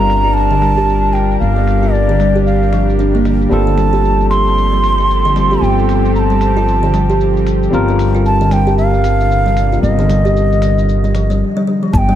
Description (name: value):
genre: organic downtempo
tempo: 114 BPM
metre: 4/4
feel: swing 59% on 16ths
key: G minor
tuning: A4 = 440 Hz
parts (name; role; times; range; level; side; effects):
- bansuri; melody; 0.0-12.2 s; D5 to C6; -17 LUFS; right 1 dB; dub echo
- barky tine electric piano; accompaniment; 0.0-11.4 s; G3 to Bb4; -21 LUFS; equal; lush chorus, sidechain pumping, dub echo
- bowed-like drone; sustained chords; 0.0-12.2 s; C3 to Bb4; -20 LUFS; left 2 dB; built-in reverb, vintage 12-bit sampler grit, sidechain pumping
- kalimba; arpeggios; 0.0-12.2 s; D3 to G4; -18 LUFS; right 1 dB; low-pass filter, dub echo
- upright bass; bass; 0.0-12.2 s; G1; -15 LUFS; equal; sidechain pumping
- electronic hi-hat and cabasa; drums; 0.1-12.1 s; none; -38 LUFS; left 2 dB; low-pass filter on perc, low-pass filter on hats, low-pass filter on room
- electronic kick drum; drums; 11.9-12.1 s; none; -15 LUFS; equal; overdrive
room: light reverb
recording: echo-heavy mix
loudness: -11 LUFS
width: side -11 dB against mid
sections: 0.0-11.9 A section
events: none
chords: 0.0 Gm7; 3.5 Fadd9/G; 7.7 Gm7